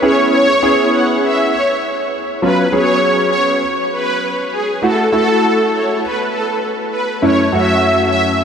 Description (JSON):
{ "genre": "pop", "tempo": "100 BPM", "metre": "4/4", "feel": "straight", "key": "unclear", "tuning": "A4 = 439 Hz", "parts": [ { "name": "supersaw pad", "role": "melody", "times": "0.0-8.2 s", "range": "G#4 to F#5", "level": "-15 LUFS", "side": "equal", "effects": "analog delay" }, { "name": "clear concert grand piano", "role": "accompaniment", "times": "0.0-8.4 s", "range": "F#2 to G#4", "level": "-16 LUFS", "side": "equal", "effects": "ensemble chorus" } ], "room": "wet huge ambient reverb, RT60 8.2 s", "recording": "dreamy mix soaked in reverb", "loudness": "-12 LUFS", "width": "side -7 dB against mid", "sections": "0.0-2.4 A section; 2.4-8.4 B section", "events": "drop 0.0-2.4", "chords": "0.0 C#m7; 2.4 C#7(no3)/F#; 4.8 F#m7; 7.2 A/F#", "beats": "| 0.02 0.62 1.22 1.82 | 2.42 3.02 3.62 4.22 | 4.82 5.42 6.02 6.62 | 7.22 7.82" }